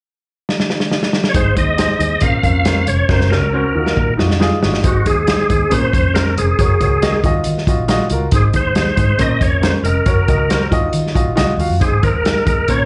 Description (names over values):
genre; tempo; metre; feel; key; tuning
uptempo 1960s-style soul; 138 BPM; 4/4; straight; Ab mixolydian; A4 = 440 Hz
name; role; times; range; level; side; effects
vintage drum kit; drums; 0.5-12.8 s; hi-hat, kick drum, snare drum; -20 LUFS; equal; none
bright tonewheel organ; melody; 1.3-12.9 s; Gb4 to F5; -20 LUFS; equal; chorus vibrato, fast rotary speaker, slapback echo
warm baby grand piano; accompaniment; 1.3-12.9 s; Ab2 to F5; -23 LUFS; equal; slapback echo
vintage muted fingered electric bass; bass; 1.3-12.8 s; F1 to Eb3; -20 LUFS; equal; none
room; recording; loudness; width
little or no reverb; live gig heard through the venue's PA, club reverb, nothing above 10.4 kHz; -15 LUFS; mono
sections
0.0-1.3 A section; 1.3-4.8 B section; 4.8-12.9 C section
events
drum fill 0.5-1.3, 3.1-4.8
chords
0.0 N.C.; 1.3 Ab; 2.2 Bbmadd9; 3.1 Gb; 3.7 Ebmadd9; 4.8 Ab; 5.7 Bbmadd9; 6.6 Gb; 7.2 Ebmadd9; 8.3 Ab; 9.2 Bbmadd9; 10.1 Gb; 10.7 Ebmadd9; 11.8 Ab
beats
0.03 0.47 0.91 | 1.34 1.78 2.22 2.65 | 3.09 3.53 3.96 4.40 | 4.83 5.27 5.71 6.14 | 6.58 7.02 7.45 7.89 | 8.32 8.76 9.20 9.63 | 10.07 10.50 10.94 11.38 | 11.81 12.25 12.68